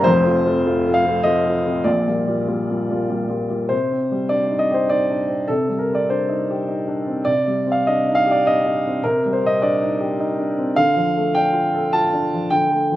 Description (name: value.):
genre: neoclassical minimalist piano.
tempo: 102 BPM.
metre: 3/4.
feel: rubato.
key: C dorian.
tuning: A4 = 440 Hz.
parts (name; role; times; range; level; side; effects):
dark baby grand piano; solo; 0.0-13.0 s; F1 to A5; -17 LUFS; equal; slapback echo.
room: little or no reverb.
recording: recorded outdoors, with no room sound, lossy compression artefacts.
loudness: -17 LUFS.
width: side -14 dB against mid.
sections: 0.0-3.7 A section; 3.7-13.0 B section.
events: none.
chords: 0.1 F; 1.9 Bb6; 3.7 Cmadd9; 10.8 Dm.